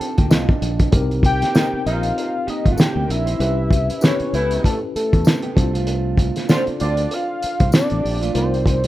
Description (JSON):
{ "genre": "lush 1970s-style soul", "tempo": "97 BPM", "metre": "4/4", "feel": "swing 58% on 16ths", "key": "unclear", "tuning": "A4 = 440 Hz", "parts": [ { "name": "fat analog lead", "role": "melody", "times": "0.0-8.9 s", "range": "A4 to G5", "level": "-23 LUFS", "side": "equal", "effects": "chorus" }, { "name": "tine electric piano", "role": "accompaniment", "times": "0.0-8.9 s", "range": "C4 to A5", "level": "-27 LUFS", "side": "left 2 dB", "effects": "overdrive, fast stereo tremolo" }, { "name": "electric guitar through a small old amp", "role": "riff", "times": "0.0-8.5 s", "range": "F3 to C5", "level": "-28 LUFS", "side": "right 8 dB", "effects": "none" }, { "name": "fingered electric bass", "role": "bass", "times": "0.0-8.8 s", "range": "G1 to E2", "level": "-22 LUFS", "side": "equal", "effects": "none" }, { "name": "cloth-damped thuddy drum kit", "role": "drums", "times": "0.0-8.9 s", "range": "hi-hat, kick drum, snare drum", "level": "-18 LUFS", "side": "equal", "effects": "none" }, { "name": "tambourine", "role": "percussion", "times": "0.3-7.9 s", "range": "none", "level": "-37 LUFS", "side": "left 3 dB", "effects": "none" }, { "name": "warm horn section", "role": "stabs", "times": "1.5-7.3 s", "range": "A3 to F4", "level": "-30 LUFS", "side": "right 2 dB", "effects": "tube saturation" } ], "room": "studio reverb", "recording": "rough home demo mix", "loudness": "-16 LUFS", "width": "side -15 dB against mid", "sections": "0.0-8.9 A section", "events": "tine electric piano fill 0.0-0.9", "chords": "0.0 Cm11; 0.9 F9sus4; 3.4 A7/C; 5.6 Dm7/C; 8.3 Cm11" }